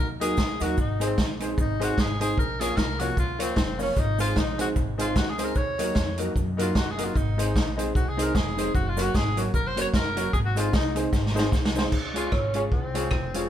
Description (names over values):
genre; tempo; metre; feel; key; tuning
ska; 151 BPM; 4/4; swing 58% on 8ths; unclear; A4 = 440 Hz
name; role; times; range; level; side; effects
clear tenor saxophone; melody; 0.0-13.5 s; C4 to Db5; -30 LUFS; left 1 dB; none
warm upright piano; stabs; 0.0-13.5 s; Eb4 to Db5; -31 LUFS; left 2 dB; none
upright bass; bass; 0.0-13.5 s; F1 to Gb2; -30 LUFS; equal; none
mellow electric guitar; accompaniment; 0.2-13.5 s; F3 to Ab4; -34 LUFS; right 4 dB; dub echo
vintage drum kit; drums; 0.2-13.4 s; crash cymbal, hi-hat, kick drum, rim click, snare drum; -26 LUFS; equal; none
cabasa; percussion; 0.2-11.8 s; none; -46 LUFS; right 4 dB; none
room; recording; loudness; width
moderate stone room reverb, RT60 1.2 s; band playing live in one room; -22 LUFS; side -10 dB against mid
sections
0.0-11.9 A section; 11.9-13.5 A section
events
tenor saxophone solo 0.0-11.9, 11.9-13.5; drum fill 11.1-11.9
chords
0.0 Ebm; 0.8 Ab; 2.4 Bbm; 4.0 Ab; 5.6 Ebm; 7.2 Ab; 8.7 Gb; 10.3 Ab; 11.9 Db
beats
0.38 | 0.78 1.18 1.58 1.98 | 2.38 2.77 3.17 3.57 | 3.97 4.37 4.77 5.16 | 5.56 5.96 6.36 6.76 | 7.15 7.55 7.95 8.35 | 8.74 9.14 9.54 9.94 | 10.34 10.73 11.13 11.53 | 11.93 12.32 12.72 13.12